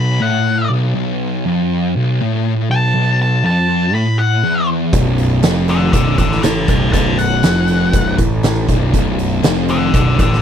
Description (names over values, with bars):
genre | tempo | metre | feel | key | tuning
blues rock power trio and southern rock | 120 BPM | 4/4 | straight | unclear | A4 = 442 Hz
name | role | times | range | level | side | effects
octave-fuzz lead guitar | melody | 0.0-10.4 s | D5 to B5 | -18 LUFS | left 3 dB | distortion
thick fuzz guitar | riff | 0.0-10.4 s | B1 to A2 | -16 LUFS | equal | distortion
fuzz picked electric bass | bass | 4.9-10.4 s | B0 to A1 | -18 LUFS | equal | overdrive
oversized low-tuned drum kit | drums | 4.9-10.4 s | hi-hat, kick drum, snare drum | -17 LUFS | equal | none
room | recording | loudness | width
small room reverb | none | -13 LUFS | side -8 dB against mid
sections
0.0-10.4 A section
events
none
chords
0.0 B5